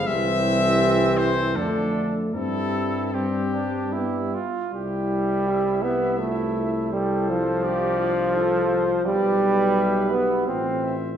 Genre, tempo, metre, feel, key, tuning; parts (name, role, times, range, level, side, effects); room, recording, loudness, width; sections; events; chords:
classical, hymn-like piece for brass band; 74-86 BPM; 3/4; rubato; C major; A4 = 441 Hz
clear cornet; melody; 0.0-11.2 s; G4 to F5; -29 LUFS; left 2 dB
warm flugelhorn; second line; 0.0-11.2 s; C4 to C5; -29 LUFS; right 3 dB
clear trombone; accompaniment; 0.0-10.9 s; D3 to C4; -24 LUFS; equal
dark euphonium; accompaniment; 0.0-11.2 s; G3 to G4; -28 LUFS; left 1 dB
mellow tuba; bass; 0.0-11.2 s; A1 to G2; -28 LUFS; equal
wet recital hall reverb, RT60 1.3 s; heard from further back in the room; -20 LUFS; side -9 dB against mid
0.0-4.7 A section; 4.7-11.2 B section
0.1 C; 1.6 Dm/F; 2.3 C/G; 3.9 G; 4.7 C; 6.9 Dm7/C; 9.1 G/B; 10.5 F/A